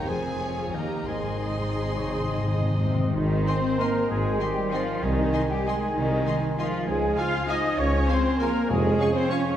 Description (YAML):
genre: classical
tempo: 164-216 BPM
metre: 3/4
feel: rubato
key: Ab major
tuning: A4 = 440 Hz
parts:
  - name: rich studio violin section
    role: melody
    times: 0.0-9.4 s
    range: Ab5 to Db6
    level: -39 LUFS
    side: left 5 dB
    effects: none
  - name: mellow hollow flute section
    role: second line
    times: 0.0-9.6 s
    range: G4 to F6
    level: -34 LUFS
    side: left 2 dB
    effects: none
  - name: warm clarinet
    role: second line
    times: 0.0-9.6 s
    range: C4 to F5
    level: -34 LUFS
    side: left 1 dB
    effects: none
  - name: warm cor anglais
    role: second line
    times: 0.0-9.6 s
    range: Bb4 to Ab5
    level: -36 LUFS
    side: right 1 dB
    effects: none
  - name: warm studio violin section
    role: second line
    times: 0.0-9.4 s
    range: Eb4 to Ab5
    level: -38 LUFS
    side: left 2 dB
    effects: none
  - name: clear bassoon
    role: accompaniment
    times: 0.0-9.6 s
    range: Eb3 to C4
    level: -35 LUFS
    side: right 1 dB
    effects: none
  - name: rich studio viola section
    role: accompaniment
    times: 0.0-9.6 s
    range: C4 to F5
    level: -33 LUFS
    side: right 1 dB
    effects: none
  - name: concert harp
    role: arpeggios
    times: 0.0-9.6 s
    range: F2 to Ab5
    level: -36 LUFS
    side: left 4 dB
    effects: none
  - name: rich studio cello section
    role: bass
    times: 0.0-9.6 s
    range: Eb2 to F4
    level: -30 LUFS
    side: right 1 dB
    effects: none
  - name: rich studio double bass section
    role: bass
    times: 0.0-8.9 s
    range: F1 to F2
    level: -31 LUFS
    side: right 1 dB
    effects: none
  - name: dark French horn section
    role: sustained chords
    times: 0.4-9.6 s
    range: C3 to F4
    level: -33 LUFS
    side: left 3 dB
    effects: none
  - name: timpani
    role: percussion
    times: 1.1-5.5, 8.7-9.1 s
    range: F2 to C3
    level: -29 LUFS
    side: left 1 dB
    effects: none
  - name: warm tuba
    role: bass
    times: 3.2-8.9 s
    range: F1 to Db2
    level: -33 LUFS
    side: right 2 dB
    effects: none
  - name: dark trombone section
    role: sustained chords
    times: 3.5-9.4 s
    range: Eb3 to Db4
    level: -36 LUFS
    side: right 4 dB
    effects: none
room: wet scoring stage reverb, RT60 1.4 s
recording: heard from further back in the room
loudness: -22 LUFS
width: side -10 dB against mid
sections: 0.0-3.2 A section; 3.2-9.6 B section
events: timpani fill 1.1-3.2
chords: 0.1 Fm; 0.7 Eb; 1.1 Ab; 5.0 Ab/C; 6.9 Db; 8.7 Db/F